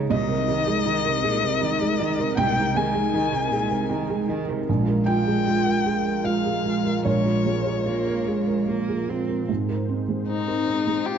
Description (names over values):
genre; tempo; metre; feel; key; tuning
neoclassical piano and strings; 74-80 BPM; 3/4; rubato; Ab major; A4 = 441 Hz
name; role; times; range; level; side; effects
rich cello; second line; 0.0-11.2 s; Bb2 to F4; -27 LUFS; right 3 dB; none
felt-muted upright piano; accompaniment; 0.0-11.2 s; Bb1 to Ab5; -25 LUFS; right 3 dB; none
warm analog pad; sustained chords; 0.0-11.2 s; Ab3 to Db5; -31 LUFS; left 2 dB; chorus
warm violin; melody; 0.1-11.2 s; Eb4 to Ab5; -26 LUFS; left 7 dB; none
room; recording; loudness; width
wet scoring stage reverb, RT60 1.7 s; dark, warm production, nothing above 7.8 kHz; -21 LUFS; side -8 dB against mid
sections
0.0-9.5 A section; 9.5-11.2 B section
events
none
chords
0.1 Abadd9/C; 4.7 Bbm7; 9.5 Abadd9